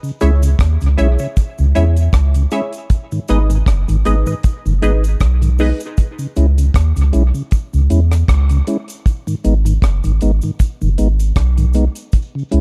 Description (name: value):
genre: dub reggae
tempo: 78 BPM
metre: 4/4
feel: swing 55% on 16ths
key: C# minor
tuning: A4 = 440 Hz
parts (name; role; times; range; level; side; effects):
- mellow tonewheel organ; accompaniment; 0.0-12.6 s; G#2 to E4; -22 LUFS; equal; none
- cabasa; percussion; 0.0-12.3 s; none; -42 LUFS; equal; tape echo
- filtered dub chord stab; stabs; 0.2-5.8 s; D#4 to E5; -26 LUFS; equal; phaser, tape echo
- soft dub sub bass; bass; 0.2-12.6 s; F#1 to E2; -15 LUFS; equal; none
- deep reggae drum kit; drums; 0.2-12.6 s; hi-hat, kick drum, rim click; -18 LUFS; equal; none
room: small room ambience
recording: dark, warm production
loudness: -15 LUFS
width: mono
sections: 0.0-12.6 A section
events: part muted 12.1-12.6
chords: 0.0 C#m; 2.9 G#m; 6.0 C#m; 9.1 G#m